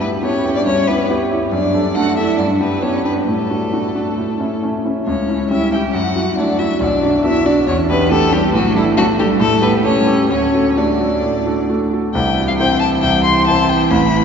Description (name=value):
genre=quick classical-period movement for piano trio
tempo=137 BPM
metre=4/4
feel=straight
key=D major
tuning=A4 = 440 Hz
part: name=clear violin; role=melody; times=0.0-14.2 s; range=E4 to C6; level=-19 LUFS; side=left 4 dB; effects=none
part: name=clear cello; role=second line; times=0.0-14.2 s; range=E3 to G4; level=-20 LUFS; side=right 3 dB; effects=none
part: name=clear grand piano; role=accompaniment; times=0.0-14.2 s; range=A1 to C5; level=-16 LUFS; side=equal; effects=none
room=wet cathedral reverb, RT60 4.9 s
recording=heard from further back in the room, nothing above 7.7 kHz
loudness=-14 LUFS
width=side -6 dB against mid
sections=0.0-12.2 A section; 12.2-14.2 B section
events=none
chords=0.0 Em/G; 1.5 D/F#; 2.4 G; 3.3 D/A; 4.2 A; 5.1 C#dim; 5.9 F#m7; 6.8 Bm; 7.7 Em7; 8.5 D5/A; 9.4 A7; 10.3 D; 12.2 C